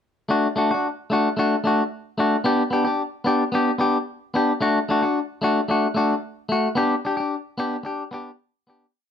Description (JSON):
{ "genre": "highlife", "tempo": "111 BPM", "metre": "4/4", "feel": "swing 53% on 16ths", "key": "D major", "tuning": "A4 = 439 Hz", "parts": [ { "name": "clean electric guitar", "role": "solo", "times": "0.3-8.9 s", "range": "A3 to G4", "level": "-20 LUFS", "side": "left 1 dB", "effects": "none" } ], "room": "moderate studio reverb, RT60 0.7 s", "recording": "none", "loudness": "-20 LUFS", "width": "side -8 dB against mid", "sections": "0.3-8.9 A section", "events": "fade-out 6.8-8.9", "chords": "0.3 D; 2.5 G; 4.6 D; 6.8 G" }